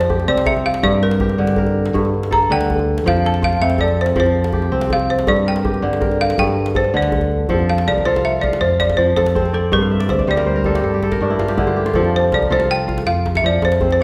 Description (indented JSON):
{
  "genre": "west african traditional, West African string and xylophone music",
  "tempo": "108 BPM (dotted quarters)",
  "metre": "12/8",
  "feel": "straight",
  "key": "F major",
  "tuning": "A4 = 440 Hz",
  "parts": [
    { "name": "balafon", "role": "melody", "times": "0.0-14.0 s", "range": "A4 to Bb5", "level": "-20 LUFS", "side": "equal", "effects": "none" },
    { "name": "kora", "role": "arpeggios", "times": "0.0-14.0 s", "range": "G2 to F5", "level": "-22 LUFS", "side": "equal", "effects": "none" },
    { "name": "fingered electric bass", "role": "bass", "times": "0.0-14.0 s", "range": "C2 to G2", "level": "-23 LUFS", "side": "equal", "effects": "none" },
    { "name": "djembe", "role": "percussion", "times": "0.0-14.0 s", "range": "none", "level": "-27 LUFS", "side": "equal", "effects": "none" }
  ],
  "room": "wet recital hall reverb, RT60 1.3 s",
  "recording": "recorded in a church or concert hall",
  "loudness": "-17 LUFS",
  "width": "mono",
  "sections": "0.0-7.5 A section; 7.5-14.0 B section",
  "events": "balafon solo 0.0-7.5; kora fill 9.8-12.0",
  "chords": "0.0 F; 0.8 Gm; 3.1 F; 5.3 Gm; 7.5 F; 9.7 Gm; 12.0 F"
}